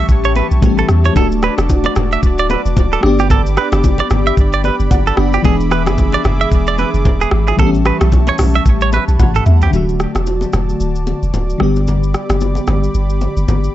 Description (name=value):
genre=afrobeats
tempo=112 BPM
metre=4/4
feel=swing 58% on 16ths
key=D major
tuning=A4 = 440 Hz
part: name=FM electric piano with soft pad layer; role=accompaniment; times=0.0-13.7 s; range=D3 to B5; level=-19 LUFS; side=left 2 dB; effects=chorus, tremolo
part: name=warm analog pad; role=sustained chords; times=0.0-13.7 s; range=F#4 to D6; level=-24 LUFS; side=equal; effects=chorus
part: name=direct-recorded clean electric guitar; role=riff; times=0.0-9.7 s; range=G4 to E5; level=-19 LUFS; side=right 8 dB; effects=tape echo
part: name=punchy sub bass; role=bass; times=0.0-13.7 s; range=D1 to E2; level=-16 LUFS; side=equal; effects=none
part: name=afro-pop drum kit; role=drums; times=0.1-13.7 s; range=hi-hat, kick drum, rim click, shaker, toms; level=-16 LUFS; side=equal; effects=none
part: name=bongos and congas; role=percussion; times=0.4-13.6 s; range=none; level=-22 LUFS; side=left 2 dB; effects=none
room=digital ambience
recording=nothing above 7.8 kHz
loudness=-11 LUFS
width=side -13 dB against mid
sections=0.0-9.7 A section; 9.7-13.7 B section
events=FM electric piano fill 4.4-5.4, 8.7-9.7; drum fill 9.2-9.7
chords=0.0 A7; 1.2 D; 3.0 G; 5.4 E7; 7.6 A7; 9.7 D; 11.6 G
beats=0.09 0.62 | 1.16 1.70 2.23 2.77 | 3.30 3.84 4.37 4.91 | 5.45 5.98 6.52 7.05 | 7.59 8.12 8.66 9.20 | 9.73 10.27 10.80 11.34 | 11.87 12.41 12.95 13.48